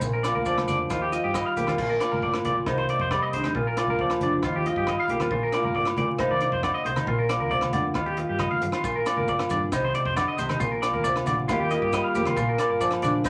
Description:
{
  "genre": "highlife guitar band",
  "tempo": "136 BPM",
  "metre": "4/4",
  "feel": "straight",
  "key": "Bb major",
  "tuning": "A4 = 440 Hz",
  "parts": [
    { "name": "picked old ladder-braced acoustic guitar", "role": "accompaniment", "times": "0.0-13.3 s", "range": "A2 to G4", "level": "-29 LUFS", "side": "equal", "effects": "none" },
    { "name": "clean electric guitar", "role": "arpeggios", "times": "0.0-13.3 s", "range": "Eb4 to F5", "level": "-29 LUFS", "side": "equal", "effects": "tremolo" },
    { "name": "hollow-body short-scale fingered electric bass", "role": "bass", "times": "0.0-13.3 s", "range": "G1 to Bb2", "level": "-38 LUFS", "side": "equal", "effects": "none" },
    { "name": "tight funk drum kit", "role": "drums", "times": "0.0-13.3 s", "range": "crash cymbal, hi-hat, kick drum, rim click", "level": "-38 LUFS", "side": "equal", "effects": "none" },
    { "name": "maracas", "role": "percussion", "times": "0.0-1.7, 8.8-13.3 s", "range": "none", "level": "-48 LUFS", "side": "equal", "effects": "none" },
    { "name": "agogo bells", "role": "percussion", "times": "0.2-13.3 s", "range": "none", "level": "-38 LUFS", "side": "equal", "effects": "none" },
    { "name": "congas", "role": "percussion", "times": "0.3-13.1 s", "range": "none", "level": "-36 LUFS", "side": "equal", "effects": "none" }
  ],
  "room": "wet small room reverb, RT60 0.5 s",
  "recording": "vinyl crackle",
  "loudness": "-25 LUFS",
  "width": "mono",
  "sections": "0.0-1.8 A section; 1.8-13.3 A section",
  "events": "drum fill 8.4-8.8",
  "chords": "0.0 Bb; 0.9 Ebadd9; 1.8 Bb; 2.7 Cmadd9; 3.5 Bb; 4.4 Ebadd9; 5.3 Bb; 6.2 Cmadd9; 7.1 Bb; 8.0 Ebadd9; 8.8 Bb; 9.7 Cmadd9; 10.6 Bb; 11.5 Ebadd9; 12.4 Bb"
}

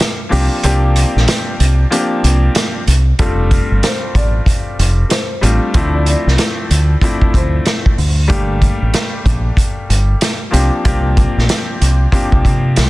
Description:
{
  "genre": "hip hop, boom-bap hip-hop",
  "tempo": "94 BPM",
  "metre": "4/4",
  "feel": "swing 63% on 16ths",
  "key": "unclear",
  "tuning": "A4 = 441 Hz",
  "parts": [
    { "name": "bright upright piano", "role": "accompaniment", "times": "0.0-12.9 s", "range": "F3 to G4", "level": "-20 LUFS", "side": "left 2 dB", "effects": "cassette tape, high-pass filter, low-pass filter" },
    { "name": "vintage drum kit", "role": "drums", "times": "0.0-12.9 s", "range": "hi-hat, kick drum, snare drum", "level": "-16 LUFS", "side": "equal", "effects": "vintage 12-bit sampler grit" },
    { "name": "deep dub fingered electric bass", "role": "bass", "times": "0.3-12.9 s", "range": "F1 to C3", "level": "-13 LUFS", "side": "equal", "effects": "none" },
    { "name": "dark upright piano", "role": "melody", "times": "3.2-7.8 s", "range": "A4 to D5", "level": "-25 LUFS", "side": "left 2 dB", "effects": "high-pass filter, low-pass filter, ping-pong delay" }
  ],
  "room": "studio ambience",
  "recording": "dense, heavily limited modern master",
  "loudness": "-12 LUFS",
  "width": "side -19 dB against mid",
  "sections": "0.0-12.9 A section",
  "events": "kick muted 0.6-3.2",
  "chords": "0.3 C7sus4; 3.2 F6; 5.7 Dm7; 8.3 Gmadd9; 10.5 C7sus4"
}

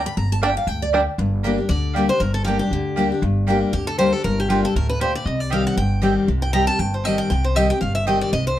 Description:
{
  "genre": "bluegrass",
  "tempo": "235 BPM",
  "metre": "4/4",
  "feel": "swing 56% on 8ths",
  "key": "G minor",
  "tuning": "A4 = 439 Hz",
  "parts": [
    { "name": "picked steel-string acoustic guitar", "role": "accompaniment", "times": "0.0-8.6 s", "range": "G2 to B5", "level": "-22 LUFS", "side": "left 2 dB", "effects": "none" },
    { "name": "upright bass", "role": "bass", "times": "0.0-8.6 s", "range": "G1 to D2", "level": "-23 LUFS", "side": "equal", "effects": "none" },
    { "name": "bluegrass banjo", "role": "arpeggios", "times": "0.4-1.0 s", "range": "G3 to D4", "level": "-24 LUFS", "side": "right 2 dB", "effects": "none" },
    { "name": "mandolin", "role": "stabs", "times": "0.4-8.2 s", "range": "Bb3 to G5", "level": "-24 LUFS", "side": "right 2 dB", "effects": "none" },
    { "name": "picked acoustic archtop guitar", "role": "melody", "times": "1.7-8.6 s", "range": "F4 to Bb5", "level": "-24 LUFS", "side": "equal", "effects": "none" }
  ],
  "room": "light reverb",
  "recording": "dark, warm production",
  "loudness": "-18 LUFS",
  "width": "side -12 dB against mid",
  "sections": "0.0-1.2 A section; 1.2-8.6 B section",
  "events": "steel-string acoustic guitar solo 0.0-1.2",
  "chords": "0.0 Gm; 5.3 Cm"
}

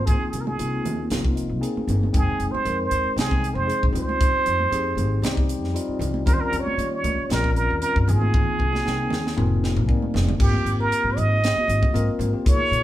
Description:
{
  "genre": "electric jazz fusion",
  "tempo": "116 BPM",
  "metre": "4/4",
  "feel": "straight",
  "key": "unclear",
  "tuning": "A4 = 443 Hz",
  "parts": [
    { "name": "trumpet with plunger mute", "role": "melody", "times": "0.0-12.8 s", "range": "G4 to Eb5", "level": "-24 LUFS", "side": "right 2 dB", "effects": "none" },
    { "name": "tine electric piano", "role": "accompaniment", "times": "0.0-12.8 s", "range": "G3 to Ab5", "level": "-28 LUFS", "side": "left 2 dB", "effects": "medium tremolo" },
    { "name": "upright bass", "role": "bass", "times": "0.0-12.8 s", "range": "F1 to Eb3", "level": "-25 LUFS", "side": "equal", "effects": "none" },
    { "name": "crisp fusion drum kit", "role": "drums", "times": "0.1-12.8 s", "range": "crash cymbal, hi-hat, kick drum, snare drum, toms", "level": "-23 LUFS", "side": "equal", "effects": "none" },
    { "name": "congas", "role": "percussion", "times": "0.1-12.7 s", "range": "none", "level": "-33 LUFS", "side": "right 3 dB", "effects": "none" }
  ],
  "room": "moderate stone room reverb, RT60 1.0 s",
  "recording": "band playing live in one room",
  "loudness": "-20 LUFS",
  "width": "side -13 dB against mid",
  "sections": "0.0-10.4 A section; 10.4-12.8 B section",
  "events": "tine electric piano fill 1.1-2.1, 5.2-6.3, 9.6-10.4; drum fill 8.3-10.4",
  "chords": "0.0 Fm9; 3.9 Dbmaj9#11; 6.3 Eb13; 8.1 Ab6; 10.4 Abmaj13"
}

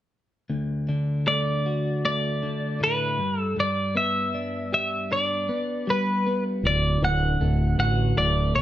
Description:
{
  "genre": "rock",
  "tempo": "78 BPM",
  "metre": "4/4",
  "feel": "straight",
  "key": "D major",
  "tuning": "A4 = 437 Hz",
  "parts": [
    { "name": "twelve-string electric guitar", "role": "arpeggios", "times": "0.5-8.6 s", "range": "D2 to G4", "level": "-26 LUFS", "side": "left 1 dB", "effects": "none" },
    { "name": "twelve-string electric guitar", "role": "melody", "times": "1.3-8.6 s", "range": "B4 to F#5", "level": "-25 LUFS", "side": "equal", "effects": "none" },
    { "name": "growling fingered electric bass", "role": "bass", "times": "6.6-8.6 s", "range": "D1 to B1", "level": "-23 LUFS", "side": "equal", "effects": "overdrive" }
  ],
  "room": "moderate large studio reverb, RT60 1.2 s",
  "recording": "band playing live in one room",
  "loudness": "-22 LUFS",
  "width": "side -13 dB against mid",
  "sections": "0.5-8.6 A section",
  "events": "none",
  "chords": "0.5 D; 3.2 G; 6.7 D"
}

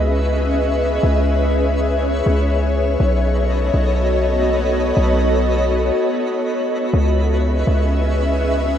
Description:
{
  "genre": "hip hop",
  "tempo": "122 BPM",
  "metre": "4/4",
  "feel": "half-time",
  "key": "C# minor",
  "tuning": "A4 = 441 Hz",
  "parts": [
    { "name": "ethereal airy pad", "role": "sustained chords", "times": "0.0-8.8 s", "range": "B3 to E5", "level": "-18 LUFS", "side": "left 1 dB", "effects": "ensemble chorus, built-in reverb" },
    { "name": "warm 808-style bass", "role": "bass", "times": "0.0-8.8 s", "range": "B1 to C#2", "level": "-18 LUFS", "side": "equal", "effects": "none" },
    { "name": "twinkling granular texture", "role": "texture", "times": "0.0-8.8 s", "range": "A3 to C#5", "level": "-29 LUFS", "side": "equal", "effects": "built-in reverb" }
  ],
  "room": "digital ambience",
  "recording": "rough home demo mix",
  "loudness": "-15 LUFS",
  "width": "side -9 dB against mid",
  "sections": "0.0-6.9 A section; 6.9-8.8 B section",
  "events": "break 6.0-6.9",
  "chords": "0.0 C#m7; 3.0 B7; 6.9 C#m7"
}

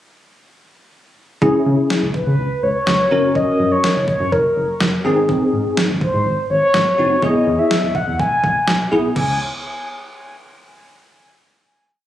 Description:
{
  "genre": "synth-pop",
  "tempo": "124 BPM",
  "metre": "4/4",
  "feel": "straight",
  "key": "C# dorian",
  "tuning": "A4 = 439 Hz",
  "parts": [
    { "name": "bell-like tine electric piano", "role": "accompaniment", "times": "1.4-9.1 s", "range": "B3 to A#4", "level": "-17 LUFS", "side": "left 1 dB", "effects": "ensemble chorus" },
    { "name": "round analog bass", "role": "bass", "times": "1.4-9.4 s", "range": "E1 to C#3", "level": "-22 LUFS", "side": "equal", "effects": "none" },
    { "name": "clean 12-bit digital drum machine", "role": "drums", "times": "1.4-9.3 s", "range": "crash cymbal, kick drum, snare drum", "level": "-22 LUFS", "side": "equal", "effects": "overdrive" },
    { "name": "mellow horn-like synth lead", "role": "melody", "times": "2.1-9.4 s", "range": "A#4 to G#5", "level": "-18 LUFS", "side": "left 1 dB", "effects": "chorus, ping-pong delay" }
  ],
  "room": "moderate lush hall reverb, RT60 1.9 s, digital ambience",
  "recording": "recorded on a phone in the room, club reverb, compression",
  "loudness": "-15 LUFS",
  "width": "side -12 dB against mid",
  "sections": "1.4-9.2 verse; 9.2-11.1 final chord",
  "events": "none",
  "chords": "1.4 C#m7; 3.1 F#; 5.0 G#; 7.2 E; 9.2 C#5"
}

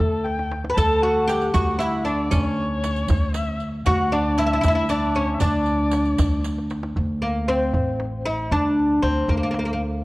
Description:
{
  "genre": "Persian modal ensemble",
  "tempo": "78 BPM (dotted quarters)",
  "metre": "6/8",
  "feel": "straight",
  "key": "D dastgah mahur, D dastgah shur from 7.0 s",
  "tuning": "A4 = 439 Hz",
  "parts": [
    { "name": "oud", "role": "melody", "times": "0.0-9.8 s", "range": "A3 to B4", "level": "-22 LUFS", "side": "equal", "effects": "none" },
    { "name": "dark kamancheh", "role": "second line", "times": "0.0-6.4 s", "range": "A4 to A5", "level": "-28 LUFS", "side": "left 2 dB", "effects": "none" },
    { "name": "upright bass", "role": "bass", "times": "0.0-10.0 s", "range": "A1 to D2", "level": "-25 LUFS", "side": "equal", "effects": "none" },
    { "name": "tombak", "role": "percussion", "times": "0.0-9.9 s", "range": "none", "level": "-25 LUFS", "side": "equal", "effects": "none" },
    { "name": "riq", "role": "percussion", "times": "0.8-6.8 s", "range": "none", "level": "-35 LUFS", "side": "right 4 dB", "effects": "none" }
  ],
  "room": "light reverb",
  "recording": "worn, warbling old tape, cassette tape, warbly pitch drift",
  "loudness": "-19 LUFS",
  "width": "side -20 dB against mid",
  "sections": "0.0-7.0 A section; 7.0-10.0 B section",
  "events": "drum fill 0.2-0.8, 6.4-7.0",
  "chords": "none"
}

